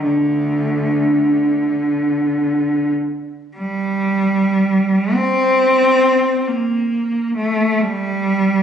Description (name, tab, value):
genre	classical, free, expressive piece for unaccompanied cello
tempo	26-47 BPM (dotted quarters)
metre	6/8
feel	rubato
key	G minor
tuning	A4 = 440 Hz
part	rich cello	solo	0.0-8.6 s	D2 to C4	-15 LUFS	equal	none
room	moderate scoring stage reverb, RT60 1.7 s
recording	recorded on a phone in the room, club reverb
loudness	-15 LUFS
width	side -8 dB against mid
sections	0.0-3.6 A section; 3.6-8.6 B section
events	none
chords	none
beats	| 0.04 1.71 | 3.57 5.15 | 6.50 7.80